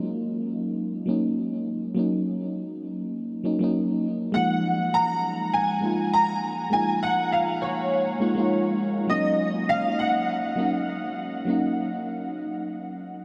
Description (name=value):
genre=chillout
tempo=101 BPM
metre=4/4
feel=swing 55% on 16ths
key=F# major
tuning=A4 = 436 Hz
part: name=mellow FM electric piano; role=accompaniment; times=0.0-13.2 s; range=E#3 to E#4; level=-28 LUFS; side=equal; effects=chorus, vintage 12-bit sampler grit, diffuse ambient delay
part: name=clear concert grand piano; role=melody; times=4.3-13.2 s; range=C#5 to A#5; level=-27 LUFS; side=equal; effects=ensemble chorus, delay
room=wet huge ambient reverb, RT60 8.4 s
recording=dreamy mix soaked in reverb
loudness=-25 LUFS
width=mono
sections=0.0-13.2 A section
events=none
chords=0.0 F#6; 4.3 F#maj13 (rootless); 9.1 F#6